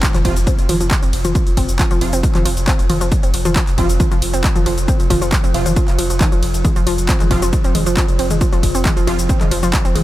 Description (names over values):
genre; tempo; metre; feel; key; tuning
driving peak-time techno; 136 BPM; 4/4; straight; F minor; A4 = 440 Hz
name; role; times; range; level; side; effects
analog pluck; riff; 0.0-10.0 s; Eb3 to C4; -22 LUFS; equal; chorus, sidechain pumping, analog delay
saturated sub bass; bass; 0.0-10.0 s; F1; -20 LUFS; equal; sidechain pumping, low-pass filter
metallic inharmonic drone; drone; 1.1-10.0 s; F3; -26 LUFS; right 2 dB; chorus, built-in reverb, sidechain pumping
electronic kick drum; drums; 0.0-9.8 s; none; -16 LUFS; equal; overdrive, small room reverb
techno drum kit; drums; 0.0-10.0 s; handclaps, hi-hat, ride cymbal, shaker, toms; -22 LUFS; left 1 dB; overdrive, sidechain pumping on hats, small room reverb, sidechain pumping on perc, sidechain pumping on toms, sidechain pumping on cymbals
impact; sound effects; 0.0-1.4 s; none; barely audible; none; none
rave stab; stabs; 0.2-9.2 s; C3 to F4; -28 LUFS; right 2 dB; none
room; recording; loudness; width
light reverb, digital ambience; none; -13 LUFS; side -15 dB against mid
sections
0.0-10.0 A section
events
impact 0.0-1.4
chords
0.0 F5